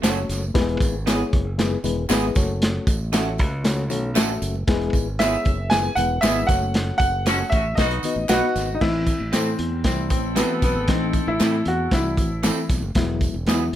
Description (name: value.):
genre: uptempo 1960s-style soul.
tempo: 116 BPM.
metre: 4/4.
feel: straight.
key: unclear.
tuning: A4 = 440 Hz.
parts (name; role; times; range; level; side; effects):
reed electric piano; accompaniment; 0.0-13.8 s; E3 to E5; -27 LUFS; left 4 dB; fast tremolo.
electric guitar through a small old amp; stabs; 0.0-13.6 s; F#3 to B4; -27 LUFS; right 5 dB; none.
modern bright fingered electric bass; bass; 0.0-13.8 s; E1 to A2; -26 LUFS; equal; none.
crunchy breakbeat drum kit; drums; 0.0-13.8 s; crash cymbal, hi-hat, kick drum, snare drum; -22 LUFS; equal; none.
congas; percussion; 0.0-13.6 s; none; -39 LUFS; right 3 dB; none.
handclaps and tambourine; percussion; 0.0-13.6 s; none; -33 LUFS; equal; none.
warm concert grand piano; melody; 5.2-12.7 s; B3 to G#5; -24 LUFS; equal; none.
clear horn section; second line; 7.3-12.7 s; A3 to A4; -30 LUFS; equal; none.
room: light reverb.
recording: none.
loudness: -19 LUFS.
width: side -12 dB against mid.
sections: 0.0-8.8 A section; 8.8-13.8 B section.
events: band accent 6.7-8.8.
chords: 0.0 F#m; 0.5 E; 2.4 F#m; 4.7 E; 6.5 F#m; 7.8 B; 8.8 Am; 13.0 Eadd9.